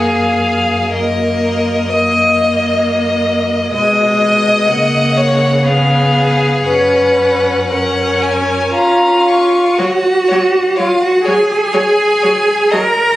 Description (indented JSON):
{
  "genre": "classical, slow romantic movement for string quartet",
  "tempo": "57-66 BPM",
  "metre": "3/4",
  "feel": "rubato",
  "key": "F# major",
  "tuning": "A4 = 441 Hz",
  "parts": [
    { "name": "rich violin", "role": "melody", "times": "0.0-12.8 s", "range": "C#5 to C#6", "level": "-18 LUFS", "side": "left 3 dB", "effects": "none" },
    { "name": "clear violin", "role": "second line", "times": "0.0-13.2 s", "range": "G#4 to A#5", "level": "-15 LUFS", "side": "left 1 dB", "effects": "none" },
    { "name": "rich viola", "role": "accompaniment", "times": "0.0-12.8 s", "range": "F#3 to C#4", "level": "-18 LUFS", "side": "equal", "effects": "none" },
    { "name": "rich cello", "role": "bass", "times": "0.0-13.2 s", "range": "F#2 to A#4", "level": "-15 LUFS", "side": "right 1 dB", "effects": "none" }
  ],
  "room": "moderate recital hall reverb, RT60 1.8 s",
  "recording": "recorded on a phone in the room, studio reverb",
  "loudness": "-11 LUFS",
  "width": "side -15 dB against mid",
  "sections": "0.0-9.8 A section; 9.8-13.2 A section",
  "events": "none",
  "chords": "0.0 F#; 3.7 G#m/B; 4.7 F#/C#; 5.7 C#7; 6.7 F#; 9.8 F#5",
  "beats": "0.00 | 0.93 1.91 2.83 | 3.74 4.69 5.67 | 6.67 7.71 8.75 | 9.78 10.77 11.73 | 12.72"
}